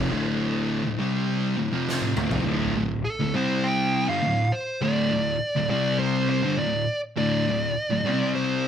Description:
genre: stoner and doom metal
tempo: 102 BPM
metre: 4/4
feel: straight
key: D minor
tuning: A4 = 440 Hz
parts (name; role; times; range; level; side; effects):
- thick fuzz guitar; riff; 0.0-8.7 s; D2 to C4; -27 LUFS; left 6 dB; distortion
- thick fuzz guitar; riff; 0.0-8.7 s; D2 to C4; -28 LUFS; right 6 dB; distortion
- oversized low-tuned drum kit; drums; 1.9-2.5 s; snare drum, toms; -32 LUFS; equal; none
- fuzz guitar; riff; 2.5-8.7 s; D2 to C4; -29 LUFS; equal; distortion
- fuzz lead guitar; melody; 3.0-8.7 s; A4 to G5; -26 LUFS; right 1 dB; distortion
room: moderate studio reverb, RT60 0.8 s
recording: band playing live in one room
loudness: -22 LUFS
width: side -8 dB against mid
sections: 0.0-2.5 A section; 2.5-8.7 B section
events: drum fill 1.9-2.5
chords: 0.0 Dm; 1.0 C5; 1.6 Dm; 2.5 D5; 3.3 C5; 4.1 D5; 5.7 C5; 6.4 D5; 8.1 C5

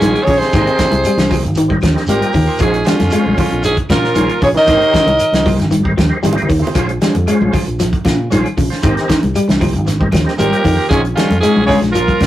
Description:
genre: afrobeat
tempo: 116 BPM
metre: 4/4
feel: straight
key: Bb dorian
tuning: A4 = 444 Hz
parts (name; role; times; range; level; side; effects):
- raspy alto saxophone; melody; 0.0-5.6, 10.4-12.3 s; F4 to Eb5; -16 LUFS; right 1 dB; none
- clear bass trombone; second line; 0.0-5.5, 10.4-12.3 s; F2 to Eb3; -22 LUFS; left 1 dB; none
- clear trumpet; second line; 0.0-5.6, 10.4-12.3 s; Db4 to Bb4; -22 LUFS; right 2 dB; none
- percussive tonewheel organ; accompaniment; 0.0-11.8 s; C4 to G5; -23 LUFS; equal; slow rotary speaker, overdrive, chorus vibrato
- electric guitar through a small old amp; arpeggios; 0.0-12.3 s; Db3 to Ab3; -18 LUFS; left 2 dB; none
- electric guitar at the edge of break-up; stabs; 0.0-12.2 s; Ab3 to C5; -28 LUFS; right 4 dB; harmonic tremolo
- fingered electric bass; bass; 0.0-12.3 s; Ab1 to Bb2; -18 LUFS; equal; none
- warm soul drum kit; drums; 0.0-12.3 s; hi-hat, kick drum, snare drum; -18 LUFS; equal; none
- congas; percussion; 0.0-12.3 s; none; -20 LUFS; left 1 dB; none
- shekere; percussion; 0.0-12.3 s; none; -26 LUFS; equal; none
- claves; percussion; 0.1-12.3 s; none; -33 LUFS; left 3 dB; none
room: light reverb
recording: rough rehearsal-room recording, warm saturation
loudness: -11 LUFS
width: side -13 dB against mid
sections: 0.0-12.3 A section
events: drum fill 5.7-6.8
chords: 0.0 Bbm9; 0.5 Abmaj9; 2.6 Bbm9; 4.7 Abmaj9; 6.8 Bbm9; 8.8 Abmaj9; 10.9 Bbm9

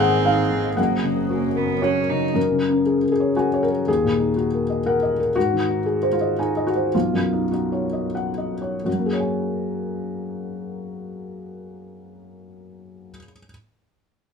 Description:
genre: neoclassical piano and strings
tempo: 83-122 BPM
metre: 3/4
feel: rubato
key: F# major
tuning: A4 = 440 Hz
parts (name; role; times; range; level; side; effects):
- warm cello; second line; 0.0-2.4 s; A#3 to D#4; -25 LUFS; right 9 dB; none
- felt-muted upright piano; accompaniment; 0.0-13.5 s; B1 to G#5; -20 LUFS; left 2 dB; none
- glassy FM pad; sustained chords; 0.0-2.4 s; B#3 to D#5; -31 LUFS; right 3 dB; ensemble chorus, built-in reverb
- rich double bass; bass; 0.0-2.4 s; F#1 to G#1; -31 LUFS; right 1 dB; none
room: light reverb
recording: minimal, uncompressed stereo recording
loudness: -19 LUFS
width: side -6 dB against mid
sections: 0.0-2.4 A section; 2.4-8.9 B section; 8.9-13.1 C section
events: slowing down 4.6-8.9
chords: 0.0 G#; 0.8 F#; 2.4 F#add9; 3.9 D#m; 5.4 G#; 6.9 Badd9; 8.9 F#add9

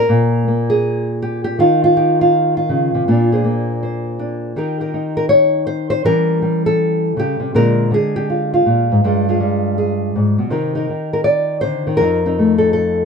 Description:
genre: solo jazz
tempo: 161 BPM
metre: 4/4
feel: swing 64% on 8ths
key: Bb mixolydian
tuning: A4 = 440 Hz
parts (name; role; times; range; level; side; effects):
- nylon-string guitar; solo; 0.0-13.1 s; F2 to D5; -14 LUFS; equal; none
room: light reverb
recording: close, detailed microphones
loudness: -14 LUFS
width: side -5 dB against mid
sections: 0.0-13.1 A section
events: none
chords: 0.0 Bb7(no3); 1.6 Eb9; 3.1 Bb9; 4.5 Eb7; 6.0 Edim7; 7.5 Bb9; 9.0 G7(no3); 10.5 Cm7; 12.0 F7

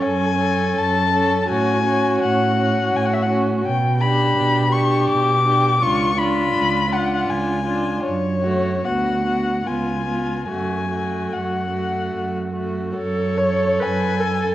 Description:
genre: classical, slow romantic movement for string quartet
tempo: 68-85 BPM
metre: 3/4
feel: rubato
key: F# minor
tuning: A4 = 440 Hz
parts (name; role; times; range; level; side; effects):
- dark violin; melody; 0.0-14.5 s; C#5 to D6; -22 LUFS; left 4 dB; none
- dark violin; second line; 0.0-14.5 s; E#4 to A4; -24 LUFS; left 1 dB; none
- warm viola; accompaniment; 0.0-14.5 s; A3 to C#5; -25 LUFS; right 2 dB; none
- dark cello; bass; 0.0-14.5 s; C#2 to B2; -23 LUFS; right 2 dB; none
room: moderate recital hall reverb, RT60 1.7 s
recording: worn, warbling old tape, cassette tape, warbly pitch drift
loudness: -17 LUFS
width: side -13 dB against mid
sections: 0.0-13.0 A section; 13.0-14.5 A section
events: none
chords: 0.0 F#m; 1.5 F#m/A; 3.6 G/B; 5.8 C#7b9; 8.0 F#m; 8.9 Bm/D; 9.7 C#7; 10.5 F#m

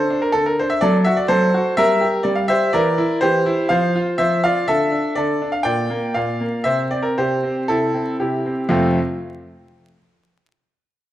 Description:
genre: classical-period piano sonatina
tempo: 122 BPM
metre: 4/4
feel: uneven beats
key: F major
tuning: A4 = 441 Hz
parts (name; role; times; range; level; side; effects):
- bright grand piano; solo; 0.0-9.0 s; F2 to G5; -16 LUFS; equal; none
room: wet recital hall reverb, RT60 1.5 s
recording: dark, warm production, vinyl crackle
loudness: -16 LUFS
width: side -13 dB against mid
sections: 0.0-8.7 A section; 8.7-10.7 B section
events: none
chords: 0.0 D5; 0.8 F#m7b5; 1.8 Gm; 2.7 C7/E; 3.7 F5; 4.7 D5; 5.7 Bb; 6.6 C; 8.7 F

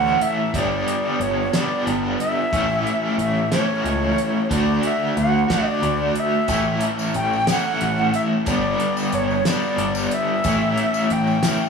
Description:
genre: psychedelic rock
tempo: 60 BPM (dotted quarters)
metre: 6/8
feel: straight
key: A mixolydian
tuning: A4 = 440 Hz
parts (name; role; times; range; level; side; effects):
- breathy bright concert flute; melody; 0.0-11.7 s; C#5 to G5; -23 LUFS; equal; none
- overdriven electric guitar; riff; 0.0-11.7 s; G2 to F#4; -21 LUFS; equal; tremolo
- overdriven picked electric bass; bass; 0.0-11.4 s; G1 to D2; -25 LUFS; equal; none
- damped 70s drum kit; drums; 0.2-11.6 s; hi-hat, kick drum, snare drum; -26 LUFS; equal; none
- tambourine; percussion; 6.5-11.7 s; none; -36 LUFS; left 5 dB; none
room: moderate large studio reverb, RT60 0.9 s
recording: band playing live in one room, small room ambience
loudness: -18 LUFS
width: side -5 dB against mid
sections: 0.0-11.7 A section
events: none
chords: 0.0 A; 0.5 G; 2.5 A; 4.5 D; 6.5 A; 8.5 G; 10.5 A

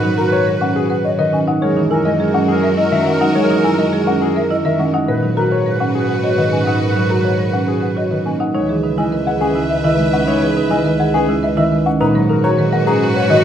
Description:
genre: classical, minimalist pattern music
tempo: 104 BPM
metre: 3/4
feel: straight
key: G# minor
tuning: A4 = 441 Hz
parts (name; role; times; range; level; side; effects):
- warm grand piano; melody; 0.0-13.4 s; G#4 to F#5; -21 LUFS; left 7 dB; none
- bright clarinet; second line; 0.0-13.4 s; A#4 to B4; -26 LUFS; right 3 dB; none
- concert harp; accompaniment; 0.0-13.4 s; A#2 to A#3; -19 LUFS; equal; none
- bright symphonic violin section; sustained chords; 0.0-13.4 s; F#4 to E5; -25 LUFS; left 4 dB; none
- marimba with medium hard mallets; arpeggios; 0.0-13.4 s; C#4 to B4; -20 LUFS; right 6 dB; none
- clear symphonic double bass section; bass; 0.0-13.4 s; C#2 to G#2; -23 LUFS; right 2 dB; none
- mellow hollow concert flute; arpeggios; 0.2-13.4 s; D#5 to A#5; -24 LUFS; left 2 dB; none
room: wet recital hall reverb, RT60 1.8 s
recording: none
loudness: -13 LUFS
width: side -9 dB against mid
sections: 0.0-8.5 A section; 8.5-13.4 A section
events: none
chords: 0.0 G#m9; 1.6 F#13; 5.1 G#m9; 8.5 C#m9; 12.0 G#m9

